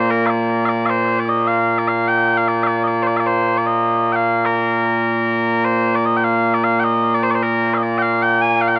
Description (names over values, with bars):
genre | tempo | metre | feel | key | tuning
scottish traditional, Scottish pipe music | 101 BPM (dotted quarters) | 6/8 | straight | Bb major | A4 = 435 Hz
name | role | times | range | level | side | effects
mellow small bagpipes | solo | 0.0-8.8 s | Bb2 to Ab5 | -17 LUFS | equal | tape echo
room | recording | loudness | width
light reverb | dry, close 1970s-style studio recording | -17 LUFS | mono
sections
0.0-5.6 A section; 5.6-8.8 A section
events
none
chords
none